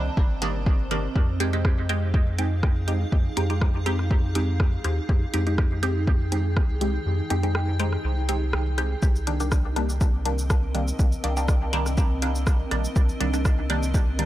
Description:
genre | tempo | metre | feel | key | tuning
dub techno | 122 BPM | 4/4 | swing 53% on 16ths | unclear | A4 = 444 Hz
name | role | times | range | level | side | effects
granular cloud pad | sustained chords | 0.0-14.3 s | C4 to G5 | -34 LUFS | right 1 dB | built-in reverb, sidechain pumping
filtered dub chord stab | stabs | 0.0-14.3 s | Eb3 to G4 | -29 LUFS | equal | phaser, dub echo
soft dub sub bass | bass | 0.0-14.3 s | G1 to F2 | -26 LUFS | equal | transformer saturation, sidechain pumping
electronic kick drum | drums | 0.2-14.0 s | none | -22 LUFS | equal | none
punchy analog drum machine | drums | 0.4-14.3 s | cabasa, hi-hat, rim click | -32 LUFS | equal | none
room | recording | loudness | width
little or no reverb | dry, gritty hardware recording | -21 LUFS | side -14 dB against mid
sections
0.0-14.3 A section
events
kick drops out 7.1-9.0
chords
0.0 Cm7; 1.2 Fm7; 9.0 Cm7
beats
0.17 0.66 | 1.16 1.65 2.14 2.63 | 3.12 3.62 4.11 4.60 | 5.09 5.58 6.07 6.57 | 7.06 7.55 8.04 8.53 | 9.03 9.52 10.01 10.50 | 10.99 11.48 11.98 12.47 | 12.96 13.45 13.94

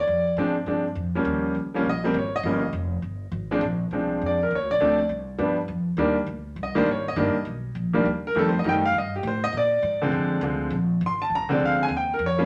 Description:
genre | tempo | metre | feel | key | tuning
jazz | 203 BPM | 4/4 | swing 61% on 8ths | Bb mixolydian | A4 = 439 Hz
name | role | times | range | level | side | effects
bright upright piano | melody | 0.0-12.5 s | D3 to C6 | -25 LUFS | equal | none
upright bass | bass | 0.0-12.5 s | F1 to Bb2 | -32 LUFS | equal | none
room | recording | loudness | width
wet studio reverb, RT60 0.8 s | none | -25 LUFS | mono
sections
0.0-10.7 A section; 10.7-12.5 A section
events
upright piano solo 0.0-12.5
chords
0.0 Bb9 (rootless); 1.3 Eb9; 3.6 Bb9; 4.8 Dm7; 5.4 G7; 6.0 Cm7; 8.4 F9; 9.5 Bb9; 11.9 Eb9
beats
| 0.08 0.37 0.67 0.96 | 1.26 1.55 1.85 2.15 | 2.44 2.74 3.03 3.33 | 3.62 3.92 4.22 4.51 | 4.81 5.10 5.40 5.69 | 5.99 6.29 6.58 6.88 | 7.17 7.47 7.76 8.06 | 8.35 8.65 8.95 9.24 | 9.54 9.83 10.13 10.42 | 10.72 11.01 11.31 11.60 | 11.90 12.20

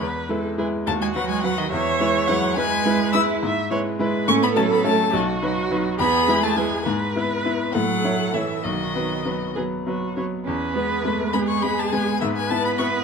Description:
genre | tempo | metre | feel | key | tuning
quick classical-period movement for piano quartet | 70 BPM (dotted quarters) | 6/8 | straight | E major from 3.4 s | A4 = 440 Hz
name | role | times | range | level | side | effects
bright baby grand piano | accompaniment | 0.0-13.0 s | B1 to C#5 | -24 LUFS | left 1 dB | none
rich viola | accompaniment | 0.0-13.0 s | F#4 to E5 | -26 LUFS | right 3 dB | none
rich violin | melody | 0.9-12.9 s | D#5 to E6 | -24 LUFS | left 6 dB | none
rich cello | second line | 0.9-13.0 s | D#3 to E4 | -26 LUFS | right 8 dB | none
room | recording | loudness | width
moderate recital hall reverb, RT60 1.6 s | close, detailed microphones | -19 LUFS | side -6 dB against mid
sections
0.0-10.5 A section; 10.5-13.0 B section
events
none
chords
0.0 E; 0.9 B/D#; 1.7 E; 3.4 E/G#; 4.3 F#m/A; 5.1 B; 6.0 E; 6.9 E/G#; 7.7 A; 8.6 B; 10.5 E; 12.2 E/G#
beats
| 0.01 0.87 | 1.72 2.58 | 3.43 4.28 | 5.13 5.99 | 6.86 7.74 | 8.64 9.55 | 10.46 11.33 | 12.21

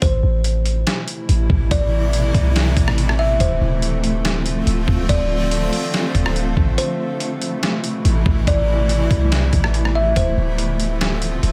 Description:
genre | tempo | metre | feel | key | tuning
hip hop, atmospheric cloud-rap | 142 BPM | 4/4 | half-time | A minor | A4 = 439 Hz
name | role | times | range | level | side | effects
kalimba | melody | 0.0-10.6 s | C5 to E5 | -28 LUFS | equal | low-pass filter, delay
granular cloud pad | sustained chords | 0.7-11.5 s | B2 to F4 | -26 LUFS | equal | built-in reverb, sidechain pumping
warm 808-style bass | bass | 0.0-11.5 s | D1 to C2 | -21 LUFS | equal | none
trip hop sampler-style drum kit | drums | 0.0-11.5 s | hi-hat, kick drum, rim click, snare drum | -23 LUFS | equal | overdrive
room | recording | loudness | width
digital ambience | none | -18 LUFS | mono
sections
0.0-11.5 A section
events
break 6.8-7.6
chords
0.0 Amadd9; 3.4 Dm7; 6.8 Amadd9; 10.2 Dm7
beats
| 0.02 0.44 0.87 1.29 | 1.71 2.13 2.56 2.98 | 3.40 3.82 4.25 4.67 | 5.09 5.51 5.94 6.36 | 6.78 7.21 7.63 8.05 | 8.47 8.89 9.32 9.74 | 10.16 10.59 11.01 11.43

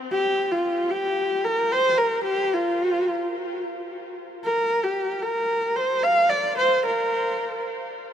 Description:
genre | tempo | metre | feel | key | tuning
mongolian traditional | 111 BPM | 4/4 | straight | F zhi mode | A4 = 436 Hz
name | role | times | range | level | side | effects
clear horsehead fiddle | melody | 0.1-7.6 s | F4 to F5 | -21 LUFS | equal | tape echo
room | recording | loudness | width
moderate huge ambient reverb, RT60 7.7 s | dark, warm production | -21 LUFS | side -9 dB against mid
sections
0.0-8.1 A section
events
none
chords
none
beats
| 0.12 0.66 1.20 1.74 | 2.28 2.82 3.36 3.90 | 4.44 4.98 5.52 6.06 | 6.59 7.13

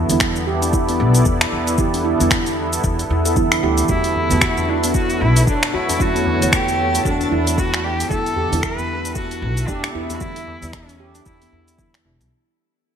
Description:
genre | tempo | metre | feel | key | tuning
organic downtempo | 114 BPM | 4/4 | swing 59% on 16ths | E dorian | A4 = 440 Hz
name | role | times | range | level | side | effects
deep mellow chord stab | accompaniment | 0.0-12.3 s | D3 to F#5 | -25 LUFS | right 4 dB | chorus, sidechain pumping, ping-pong delay
warm analog pad | sustained chords | 0.0-12.3 s | B3 to E5 | -26 LUFS | equal | chorus, tremolo, sidechain pumping
upright bass | bass | 0.0-12.3 s | E1 to E2 | -22 LUFS | equal | tube saturation, sidechain pumping
deep house drum kit | drums | 0.1-12.3 s | finger snaps, hi-hat, shaker | -22 LUFS | equal | overdrive, gated reverb
electronic kick drum | drums | 0.2-11.9 s | none | -22 LUFS | equal | none
handpan | arpeggios | 0.5-11.5 s | B3 to A4 | -23 LUFS | equal | ping-pong delay
dark cello | melody | 3.9-12.0 s | B3 to B4 | -23 LUFS | equal | ping-pong delay
tabla | percussion | 3.9-12.3 s | none | -30 LUFS | equal | none
twinkling granular texture | texture | 4.8-12.3 s | A3 to A4 | -32 LUFS | left 1 dB | built-in reverb, wide subtle chorus
room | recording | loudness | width
moderate lush hall reverb, RT60 2.4 s | bright 1980s-style digital production | -16 LUFS | side -8 dB against mid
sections
0.0-12.3 A section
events
fade-out 6.7-12.3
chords
0.0 Em7; 3.9 Bm7/E; 6.0 Dmaj7/E; 8.1 Em7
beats
0.21 0.74 1.26 | 1.79 2.31 2.84 3.37 | 3.89 4.42 4.95 5.47 | 6.00 6.53 7.05 7.58 | 8.11 8.63 9.16 9.68 | 10.21 10.74 11.26 11.79

